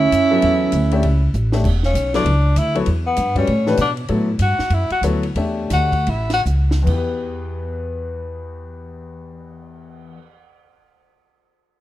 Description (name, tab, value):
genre	modal jazz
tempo	138-197 BPM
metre	4/4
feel	swing 62% on 8ths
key	E dorian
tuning	A4 = 440 Hz
part	warm tenor saxophone	melody	0.0-6.4 s	B3 to F#4	-20 LUFS	left 1 dB	plate reverb
part	breathy trombone	second line	0.0-1.3 s	C#4	-19 LUFS	right 6 dB	none
part	upright bass	bass	0.0-10.1 s	E1 to B2	-19 LUFS	equal	none
part	compact cocktail drum kit	drums	0.1-10.3 s	crash cymbal, cymbal swell, hi-hat, kick drum, ride cymbal, snare drum	-29 LUFS	equal	none
part	clear grand piano	accompaniment	0.3-10.3 s	E2 to E5	-24 LUFS	left 4 dB	none
room	light reverb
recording	dark, warm production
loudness	-16 LUFS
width	side -14 dB against mid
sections	0.0-1.6 A section; 1.6-6.9 B section; 6.9-10.4 C section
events	drum fill 1.3-1.6, 6.5-6.9; tenor saxophone solo 1.6-6.9; slowing down 4.1-6.9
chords	0.0 E13sus4; 6.9 Em